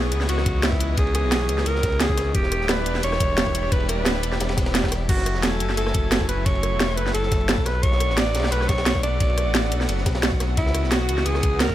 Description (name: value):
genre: liquid drum and bass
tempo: 175 BPM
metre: 4/4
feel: straight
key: F# minor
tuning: A4 = 440 Hz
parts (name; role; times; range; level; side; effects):
- growling alto saxophone; melody; 0.0-11.7 s; E4 to D5; -26 LUFS; right 1 dB; ping-pong delay
- lush unison pad; sustained chords; 0.0-11.7 s; E3 to G#5; -30 LUFS; equal; chorus, sidechain pumping
- smooth synth bass; bass; 0.0-11.7 s; D1 to C#2; -24 LUFS; equal; none
- crunchy breakbeat drum kit; drums; 0.1-11.7 s; ride cymbal, snare drum; -33 LUFS; equal; high-pass filter on cymbals, small room reverb, high-pass filter on snare, high-pass filter on room
- drum and bass drum kit; drums; 0.1-11.7 s; crash cymbal, hi-hat, rim click, snare drum; -24 LUFS; right 1 dB; overdrive, small room reverb
- electronic kick drum; drums; 0.5-11.7 s; none; -24 LUFS; equal; small room reverb
room: small room ambience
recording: none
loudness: -19 LUFS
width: side -13 dB against mid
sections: 0.0-11.7 A section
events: none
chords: 0.0 C#m9; 2.3 Em7; 5.1 F#m9; 7.7 Bm9; 10.6 C#m9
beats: 0.29 0.63 | 0.98 1.32 1.66 2.00 | 2.35 2.69 3.03 3.38 | 3.72 4.06 4.40 4.75 | 5.09 5.43 5.78 6.12 | 6.46 6.80 7.15 7.49 | 7.83 8.18 8.52 8.86 | 9.20 9.55 9.89 10.23 | 10.58 10.92 11.26 11.60